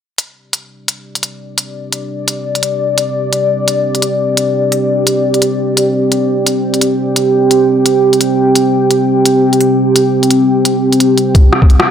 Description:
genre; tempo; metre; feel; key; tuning
half-time drum and bass; 172 BPM; 4/4; swing 56% on 16ths, half-time; unclear; A4 = 440 Hz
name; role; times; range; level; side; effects
deep dark ambient pad; sustained chords; 1.7-11.9 s; C4 to G5; -11 LUFS; equal; chorus, built-in reverb, sidechain pumping
industrial drum kit; drums; 0.2-11.9 s; hi-hat, rim click; -14 LUFS; equal; none
electronic kick drum; drums; 11.3-11.7 s; none; -6 LUFS; equal; overdrive
room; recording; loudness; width
moderate plate reverb, RT60 1.1 s, digital ambience; dreamy mix soaked in reverb; -10 LUFS; side -8 dB against mid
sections
0.2-11.9 A section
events
none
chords
0.2 C5

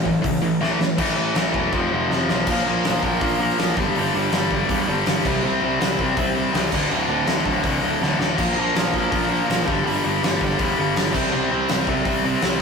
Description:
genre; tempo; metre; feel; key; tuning
punk rock; 162 BPM; 4/4; straight; unclear; A4 = 440 Hz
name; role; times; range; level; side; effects
tight distorted guitar; riff; 0.0-12.6 s; D2 to C4; -20 LUFS; left 1 dB; distortion
fuzz picked electric bass; bass; 0.1-12.6 s; D1 to E2; -27 LUFS; equal; overdrive
big rock drum kit; drums; 0.1-12.5 s; crash cymbal, hi-hat, kick drum, snare drum; -24 LUFS; equal; none
room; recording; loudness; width
light reverb; rough rehearsal-room recording; -18 LUFS; side -5 dB against mid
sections
1.0-2.5 A section; 2.5-12.6 B section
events
drum fill 0.6-1.0, 2.1-2.5, 8.0-8.4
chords
0.0 A; 1.0 A5; 1.7 F5; 2.5 Bb5; 3.8 G5; 5.2 C5; 6.7 D5; 8.4 Bb5; 9.7 G5; 11.1 C5

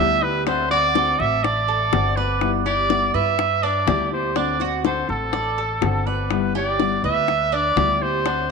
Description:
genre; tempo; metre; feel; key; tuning
latin, Cuban son and guajira; 123 BPM; 4/4; straight; G major; A4 = 440 Hz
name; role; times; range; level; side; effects
warm trumpet; melody; 0.0-8.5 s; A4 to E5; -21 LUFS; right 2 dB; none
nylon-string guitar; accompaniment; 0.0-8.5 s; D3 to F#4; -27 LUFS; left 14 dB; none
Cuban tres; arpeggios; 0.0-8.5 s; D4 to D5; -28 LUFS; right 10 dB; none
upright bass; bass; 0.0-8.5 s; G1 to G2; -27 LUFS; right 1 dB; none
bongos; percussion; 0.5-8.5 s; none; -25 LUFS; left 12 dB; none
room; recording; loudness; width
wet spring reverb, RT60 2.4 s; 1960s-style stereo with parts hard left and right; -18 LUFS; side -4 dB against mid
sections
0.0-8.5 A section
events
none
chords
0.5 D7; 2.4 G6; 4.4 D7; 6.3 G6

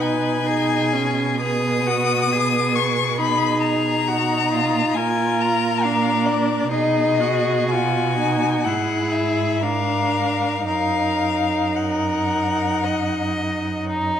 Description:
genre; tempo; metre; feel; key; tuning
classical, slow romantic movement for string quartet; 54-70 BPM; 4/4; rubato; Eb minor; A4 = 440 Hz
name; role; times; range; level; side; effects
rich violin; melody; 0.0-13.9 s; D5 to Eb6; -23 LUFS; left 8 dB; none
clear violin; second line; 0.0-14.2 s; Eb4 to Eb5; -25 LUFS; left 2 dB; none
warm viola; accompaniment; 0.0-14.2 s; Cb4 to F#4; -23 LUFS; right 2 dB; none
warm cello; bass; 0.0-14.2 s; Gb2 to Cb3; -25 LUFS; right 5 dB; none
room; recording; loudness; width
wet recital hall reverb, RT60 1.5 s; none; -18 LUFS; side -9 dB against mid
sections
0.0-14.2 A section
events
none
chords
0.0 Abm/Cb; 3.2 Fm7b5/Cb; 5.0 Bb; 6.7 B; 8.7 E/G#; 9.6 Bb7/Ab; 10.7 Ebm/Gb

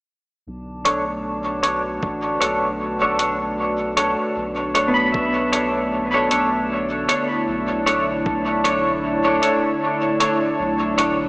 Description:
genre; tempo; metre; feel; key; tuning
ambient dub; 77 BPM; 4/4; swing 56% on 16ths; B minor; A4 = 440 Hz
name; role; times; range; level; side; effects
warm analog pad; sustained chords; 0.5-11.3 s; D3 to C#5; -25 LUFS; equal; chorus
soft dub sub bass; bass; 0.5-11.3 s; A1 to B1; -34 LUFS; equal; tube saturation
drifting glass-harmonics texture; texture; 0.7-11.3 s; D4; -26 LUFS; equal; chorus, built-in reverb
semi-hollow electric guitar; stabs; 0.8-11.2 s; D4 to C#5; -21 LUFS; equal; lush chorus, low-pass filter, dub echo
electronic hi-hat; drums; 0.9-11.2 s; none; -26 LUFS; equal; dub echo
electronic kick drum; drums; 2.0-8.4 s; none; -26 LUFS; equal; none
pedal steel guitar; arpeggios; 4.9-8.0 s; B3 to B5; -24 LUFS; equal; tape echo
room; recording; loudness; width
wet lush hall reverb, RT60 3.0 s; dreamy mix soaked in reverb, small speaker sound; -18 LUFS; side -39 dB against mid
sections
0.5-11.3 A section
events
fade-in on analog synth pad 0.5-11.3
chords
0.5 Bm7

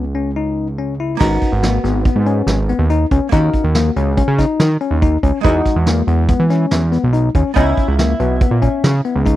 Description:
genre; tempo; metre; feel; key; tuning
progressive instrumental, band music in an uneven meter; 142 BPM; 5/4; straight; G# minor; A4 = 440 Hz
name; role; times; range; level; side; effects
bell-like tine electric piano; arpeggios; 0.0-9.4 s; A#3 to E4; -19 LUFS; left 6 dB; none
fat analog bass; bass; 0.0-9.4 s; G#1 to E3; -16 LUFS; right 1 dB; none
archtop guitar, miked and amplified; accompaniment; 1.2-9.4 s; G#3 to F#4; -24 LUFS; right 4 dB; double-tracked left and right
vintage brush drum kit; drums; 1.2-9.4 s; crash cymbal, hi-hat, kick drum, snare drum; -17 LUFS; right 1 dB; none
room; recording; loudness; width
small room ambience; dry, close 1970s-style studio recording; -13 LUFS; side -14 dB against mid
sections
0.0-1.2 A section; 1.2-9.4 B section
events
none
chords
0.0 C#m; 1.2 G#m11; 3.3 D#m7; 5.4 Emaj7; 7.6 C#m7

